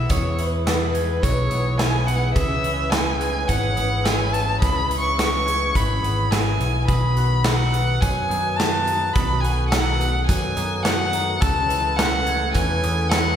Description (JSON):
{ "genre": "post-rock", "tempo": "106 BPM", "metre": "4/4", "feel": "straight", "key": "unclear", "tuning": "A4 = 441 Hz", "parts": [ { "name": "dark violin", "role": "melody", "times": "0.0-13.4 s", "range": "B4 to C#6", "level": "-24 LUFS", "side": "left 1 dB", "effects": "none" }, { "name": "brassy analog pad", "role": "sustained chords", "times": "0.0-13.4 s", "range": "D#3 to B4", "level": "-31 LUFS", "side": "right 1 dB", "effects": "chorus" }, { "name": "electric guitar through a small old amp", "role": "arpeggios", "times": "0.0-13.4 s", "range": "E2 to F#4", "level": "-30 LUFS", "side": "left 5 dB", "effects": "none" }, { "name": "glockenspiel with rubber mallets", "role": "arpeggios", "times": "0.0-13.4 s", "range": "D#6 to G#6", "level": "-32 LUFS", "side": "right 5 dB", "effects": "none" }, { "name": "overdriven picked electric bass", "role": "bass", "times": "0.0-13.4 s", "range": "G#1 to F#2", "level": "-23 LUFS", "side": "equal", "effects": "none" }, { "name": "big rock drum kit", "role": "drums", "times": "0.1-13.2 s", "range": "hi-hat, kick drum, snare drum", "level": "-24 LUFS", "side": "equal", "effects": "none" } ], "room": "wet recital hall reverb, RT60 1.6 s", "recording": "recorded in a church or concert hall", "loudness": "-18 LUFS", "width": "side -9 dB against mid", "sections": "0.0-13.4 A section", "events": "none", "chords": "0.0 E; 2.4 C#m7; 6.9 B; 11.4 Aadd9/C#" }